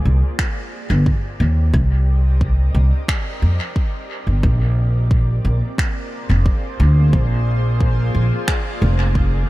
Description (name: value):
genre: ambient dub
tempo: 89 BPM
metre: 4/4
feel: straight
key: C minor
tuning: A4 = 442 Hz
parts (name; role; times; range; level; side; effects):
- granular cloud pad; sustained chords; 0.0-9.5 s; Bb3 to Eb5; -29 LUFS; equal; built-in reverb, wide subtle chorus
- upright bass; bass; 0.0-9.5 s; F1 to F2; -15 LUFS; equal; none
- electronic kick drum; drums; 0.4-9.3 s; none; -19 LUFS; equal; none
- finger snaps; drums; 0.4-8.6 s; none; -29 LUFS; right 1 dB; dub echo
room: studio ambience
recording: none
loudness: -15 LUFS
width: side -18 dB against mid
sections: 0.0-9.5 A section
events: fade-in on ambient pad 0.0-9.5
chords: 0.0 Cm7; 4.4 Bb7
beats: 0.39 1.06 | 1.74 2.41 3.09 3.76 | 4.43 5.11 5.78 6.46 | 7.13 7.81 8.48 9.15